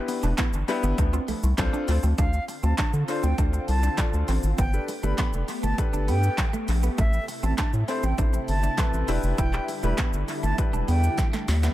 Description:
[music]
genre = dance-pop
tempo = 100 BPM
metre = 4/4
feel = straight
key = D dorian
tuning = A4 = 440 Hz
[part]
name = mallet-like synth pluck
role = melody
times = 0.0-1.4 s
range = none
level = barely audible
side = none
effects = none
[part]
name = warm grand piano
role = accompaniment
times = 0.0-11.2 s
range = B3 to D5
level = -32 LUFS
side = left 3 dB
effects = sidechain pumping, dub echo
[part]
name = mallet-like synth pluck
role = arpeggios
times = 0.1-2.1 s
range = E3 to F4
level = -36 LUFS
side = left 4 dB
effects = chorus, sidechain pumping, dub echo
[part]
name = electric guitar at the edge of break-up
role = riff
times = 0.1-11.7 s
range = A3 to E4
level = -34 LUFS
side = right 5 dB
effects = analog chorus, dub echo
[part]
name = punchy analog drum machine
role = drums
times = 0.1-11.7 s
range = handclaps, hi-hat, kick drum, shaker, snare drum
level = -27 LUFS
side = equal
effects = dub echo
[part]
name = round analog bass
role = bass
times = 0.2-11.7 s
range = E1 to D3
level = -24 LUFS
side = equal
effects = sidechain pumping
[part]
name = group handclap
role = percussion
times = 0.4-11.3 s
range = none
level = barely audible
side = none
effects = none
[part]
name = silver concert flute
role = melody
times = 2.2-11.3 s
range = E5 to B5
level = -33 LUFS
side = right 2 dB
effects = sidechain pumping, dub echo
[part]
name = soft string machine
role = sustained chords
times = 2.5-11.7 s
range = C3 to G4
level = -35 LUFS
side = left 1 dB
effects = phaser, ensemble chorus, sidechain pumping
[sound]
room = little or no reverb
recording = echo-heavy mix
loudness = -22 LUFS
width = side -14 dB against mid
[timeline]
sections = 0.0-2.2 A section; 2.2-11.7 B section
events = drum fill 11.2-11.7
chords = 0.0 Em7; 1.0 Dm7; 4.6 Gadd9; 7.0 Am; 9.1 Em7

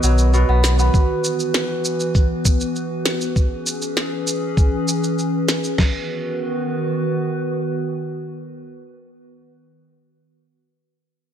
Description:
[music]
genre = folktronica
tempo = 99 BPM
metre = 4/4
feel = straight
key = B major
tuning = A4 = 441 Hz
[part]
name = warbly tape-like pad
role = sustained chords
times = 0.0-9.0 s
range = D#3 to B4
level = -22 LUFS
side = equal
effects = chorus, built-in reverb
[part]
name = kora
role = arpeggios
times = 0.0-2.7 s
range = B2 to B3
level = -25 LUFS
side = left 1 dB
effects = ping-pong delay
[part]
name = warm sub bass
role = bass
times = 0.0-0.9 s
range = B1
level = -15 LUFS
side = equal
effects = none
[part]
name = electronic shaker and snare drum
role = drums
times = 0.0-5.8 s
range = none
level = -23 LUFS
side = right 1 dB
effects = overdrive
[part]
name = lo-fi sampler-style drum kit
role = drums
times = 0.9-5.9 s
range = crash cymbal, kick drum, snare drum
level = -17 LUFS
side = equal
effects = none
[sound]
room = light reverb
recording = none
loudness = -18 LUFS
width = side -9 dB against mid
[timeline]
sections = 0.0-5.8 A section; 5.8-8.2 B section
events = none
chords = 0.0 B; 0.9 Esus2; 3.4 C#m7; 5.8 B

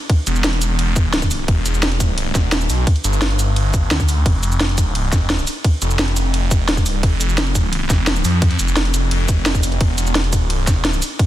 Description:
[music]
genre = dark technical drum and bass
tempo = 173 BPM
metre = 4/4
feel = straight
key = E phrygian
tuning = A4 = 441 Hz
[part]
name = drum and bass drum kit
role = drums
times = 0.1-11.3 s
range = cabasa, hi-hat, ride cymbal, snare drum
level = -21 LUFS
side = right 1 dB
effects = studio reverb
[part]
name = electronic kick drum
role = drums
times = 0.1-11.3 s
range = none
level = -16 LUFS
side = equal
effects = overdrive, studio reverb
[part]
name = phased detuned saw bass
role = bass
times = 0.3-11.0 s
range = E1 to F2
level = -18 LUFS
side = equal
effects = phaser, tube saturation, sidechain pumping
[sound]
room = little or no reverb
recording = dense, heavily limited modern master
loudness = -15 LUFS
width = side -13 dB against mid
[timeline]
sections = 0.0-11.3 A section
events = none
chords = none

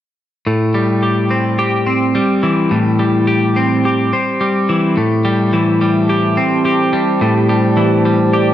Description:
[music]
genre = rock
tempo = 107 BPM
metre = 4/4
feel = straight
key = A minor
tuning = A4 = 441 Hz
[part]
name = twelve-string electric guitar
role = arpeggios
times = 0.5-8.5 s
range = A2 to G4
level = -12 LUFS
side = equal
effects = tape echo
[part]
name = dark analog pad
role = sustained chords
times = 5.0-8.5 s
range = G4 to A5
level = -20 LUFS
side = right 3 dB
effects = chorus
[sound]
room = wet large studio reverb, RT60 1.2 s, digital ambience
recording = dark, warm production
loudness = -12 LUFS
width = side -11 dB against mid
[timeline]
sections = 0.5-5.0 A section; 5.0-8.5 B section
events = none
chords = 0.5 Am7

